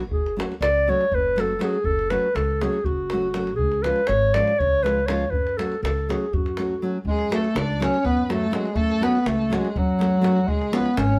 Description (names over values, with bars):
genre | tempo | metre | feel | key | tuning
balkan folk, Balkan wedding band | 243 BPM (eighths) | 7/8 | straight | F# harmonic minor | A4 = 440 Hz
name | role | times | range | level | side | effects
nylon-string guitar | accompaniment | 0.0-10.9 s | E#3 to F#4 | -30 LUFS | equal | none
upright bass | bass | 0.0-11.2 s | F#1 to F#2 | -30 LUFS | equal | none
davul | percussion | 0.0-11.1 s | none | -32 LUFS | equal | none
dark clarinet | melody | 0.1-11.2 s | F#3 to D5 | -24 LUFS | equal | none
warm violin | second line | 7.1-11.2 s | F#4 to D5 | -32 LUFS | equal | none
room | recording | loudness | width
light reverb | band playing live in one room | -22 LUFS | mono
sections
0.0-7.0 A section; 7.0-11.2 A section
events
none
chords
0.1 F#m; 3.6 C#; 5.3 F#m; 10.5 C#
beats
| 0.10 0.35 0.60 0.85 1.10 1.35 1.60 | 1.85 2.10 2.34 2.59 2.84 3.09 3.34 | 3.58 3.83 4.08 4.33 4.57 4.82 5.07 | 5.32 5.56 5.81 6.06 6.30 6.55 6.80 | 7.04 7.29 7.54 7.78 8.03 8.27 8.52 | 8.76 9.01 9.25 9.50 9.74 9.99 10.23 | 10.48 10.72 10.97